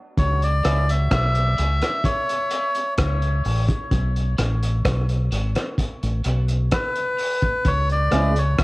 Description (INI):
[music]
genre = dub reggae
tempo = 64 BPM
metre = 4/4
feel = straight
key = C# phrygian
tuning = A4 = 445 Hz
[part]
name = melodica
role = melody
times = 0.2-8.6 s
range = B4 to E5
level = -24 LUFS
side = left 1 dB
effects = cassette tape, dub echo
[part]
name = deep dub fingered electric bass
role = bass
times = 0.2-8.6 s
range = G#1 to C#2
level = -20 LUFS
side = equal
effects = none
[part]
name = cloth-damped thuddy drum kit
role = drums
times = 0.2-8.6 s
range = hi-hat, kick drum, rim click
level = -25 LUFS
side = equal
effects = cassette tape
[part]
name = electric guitar at the edge of break-up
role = accompaniment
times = 0.6-8.3 s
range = F#3 to G#4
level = -30 LUFS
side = right 1 dB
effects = lush chorus, high-pass filter, cassette tape, dub echo
[sound]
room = light reverb, small room reverb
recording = home recording on cassette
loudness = -19 LUFS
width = side -22 dB against mid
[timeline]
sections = 0.2-8.6 A section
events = break 0.0; stop 0.0; filter sweep on clean electric guitar 0.0-7.6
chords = 0.2 C#m; 3.9 Bm; 7.6 C#m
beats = | 0.17 1.11 2.04 2.98 | 3.91 4.85 5.78 6.71 | 7.65 8.58